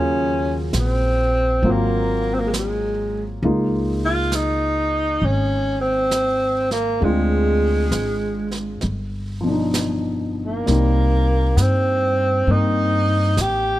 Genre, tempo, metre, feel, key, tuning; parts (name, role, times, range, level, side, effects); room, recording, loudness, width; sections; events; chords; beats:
jazz ballad; 66 BPM; 4/4; swing 68% on 8ths; A4 = 439 Hz
breathy tenor saxophone; melody; 0.0-13.8 s; Ab3 to G4; -21 LUFS; right 1 dB
warm grand piano; accompaniment; 0.0-13.8 s; B2 to F4; -24 LUFS; left 1 dB
upright bass; bass; 0.0-13.8 s; G1 to G2; -22 LUFS; equal
jazz brush drum kit; drums; 0.7-13.8 s; brushed snare drum, hi-hat, snare drum; -30 LUFS; right 3 dB
little or no reverb; -17 LUFS; side -15 dB against mid
0.0-13.8 A section
0.0 Ebm7; 1.6 Ab13; 3.4 Db69; 7.0 Dm7b5; 8.8 G7b13; 10.7 Cm7
0.72 1.62 2.52 | 3.42 4.31 5.21 6.11 | 7.02 7.92 8.82 9.74 | 10.66 11.57 12.47 13.37